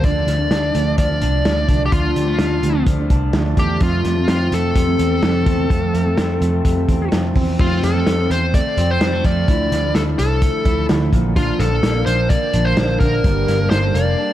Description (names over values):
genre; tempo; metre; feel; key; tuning
jangly indie pop; 127 BPM; 4/4; straight; unclear; A4 = 440 Hz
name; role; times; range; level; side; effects
dark smooth lead guitar; melody; 0.0-14.3 s; F4 to D5; -21 LUFS; left 2 dB; overdrive, dub echo
fingerpicked steel-string acoustic guitar; accompaniment; 0.0-14.3 s; F2 to A4; -24 LUFS; right 6 dB; dub echo
electric guitar through a small old amp; arpeggios; 0.0-14.3 s; F2 to E4; -25 LUFS; left 4 dB; dub echo
vintage muted picked electric bass; bass; 0.0-14.1 s; F1 to F2; -20 LUFS; equal; none
vintage drum kit; drums; 0.0-14.1 s; crash cymbal, hi-hat, kick drum, snare drum; -20 LUFS; equal; none
room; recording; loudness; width
studio reverb; echo-heavy mix; -15 LUFS; side -12 dB against mid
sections
0.0-7.6 A section; 7.6-14.3 B section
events
break 14.2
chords
0.0 Dm; 3.8 F; 9.5 Dmadd9; 11.1 Bb; 13.2 Gmadd9